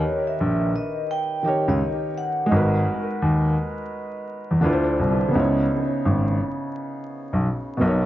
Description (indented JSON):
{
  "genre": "lo-fi hip hop",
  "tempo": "85 BPM",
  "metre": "4/4",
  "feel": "swing 62% on 16ths",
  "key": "C# dorian",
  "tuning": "A4 = 439 Hz",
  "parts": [
    { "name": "vibraphone with soft mallets", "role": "melody", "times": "0.0-3.5 s", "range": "C#5 to G5", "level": "-27 LUFS", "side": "right 1 dB", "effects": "low-pass filter, analog delay" },
    { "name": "felt-muted upright piano", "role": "accompaniment", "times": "0.0-8.1 s", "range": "B2 to C#5", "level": "-24 LUFS", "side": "equal", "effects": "low-pass filter, analog delay" },
    { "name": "dark baby grand piano", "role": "bass", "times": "0.4-8.1 s", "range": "G#1 to E2", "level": "-21 LUFS", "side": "equal", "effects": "none" }
  ],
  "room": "light reverb, studio reverb",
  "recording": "echo-heavy mix, vinyl crackle, nothing above 7.5 kHz",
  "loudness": "-20 LUFS",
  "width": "side -14 dB against mid",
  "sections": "0.0-8.1 A section",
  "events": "none",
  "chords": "0.0 D#7; 2.5 G#m9; 4.6 Dm9; 5.3 C#m9"
}